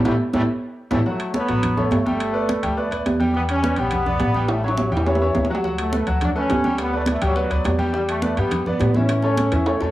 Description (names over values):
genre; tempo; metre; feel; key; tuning
latin, salsa; 209 BPM; 4/4; straight; unclear; A4 = 440 Hz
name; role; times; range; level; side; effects
bright grand piano; accompaniment; 0.0-9.9 s; E3 to G5; -24 LUFS; left 1 dB; cassette tape
brilliant trombone section; melody; 0.1-9.9 s; E3 to D4; -24 LUFS; equal; cassette tape
upright bass; bass; 0.1-9.9 s; G1 to A2; -24 LUFS; equal; none
bongos; percussion; 0.1-1.0, 5.6-9.9 s; none; -34 LUFS; left 3 dB; none
congas; percussion; 0.1-9.9 s; none; -25 LUFS; right 1 dB; none
timbales; percussion; 0.1-9.7 s; none; -28 LUFS; right 3 dB; none
room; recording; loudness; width
moderate spring reverb, RT60 1.4 s, studio reverb; home recording on cassette; -18 LUFS; side -15 dB against mid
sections
0.0-1.1 A section; 1.1-9.9 A section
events
band accent 0.0-1.1; drum fill 0.2-1.1, 4.5-5.6, 9.1-9.9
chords
0.0 A5; 1.1 Gmaj9#11; 2.2 G; 3.3 Em7; 4.5 A7; 5.6 D6; 6.8 Gmaj7/D; 7.9 Em7; 9.1 A